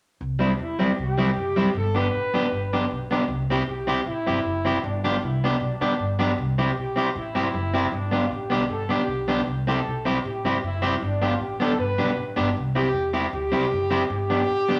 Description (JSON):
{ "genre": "ska", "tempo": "155 BPM", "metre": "4/4", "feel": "straight", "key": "C major", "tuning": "A4 = 440 Hz", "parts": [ { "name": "upright bass", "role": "bass", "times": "0.2-14.8 s", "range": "F#1 to E2", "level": "-31 LUFS", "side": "equal", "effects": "none" }, { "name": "warm horn section", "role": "melody", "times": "0.4-14.8 s", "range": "D4 to B4", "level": "-30 LUFS", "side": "equal", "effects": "none" }, { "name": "electric guitar at the edge of break-up", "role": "accompaniment", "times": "0.4-14.8 s", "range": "G3 to G4", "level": "-26 LUFS", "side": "equal", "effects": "none" } ], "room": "wet studio reverb, RT60 0.8 s", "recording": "none", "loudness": "-24 LUFS", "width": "mono", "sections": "0.2-3.3 A section; 3.3-14.8 B section", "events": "none", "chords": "0.2 C; 1.7 G; 3.3 C; 4.8 G; 6.4 C; 7.9 G; 9.5 C; 11.0 G; 12.6 C; 14.1 G", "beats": "| 0.20 0.59 0.97 1.36 | 1.75 2.13 2.52 2.91 | 3.29 3.68 4.07 4.45 | 4.84 5.23 5.61 6.00 | 6.38 6.77 7.16 7.54 | 7.93 8.32 8.70 9.09 | 9.47 9.86 10.25 10.63 | 11.02 11.40 11.79 12.17 | 12.56 12.95 13.33 13.71 | 14.10 14.49" }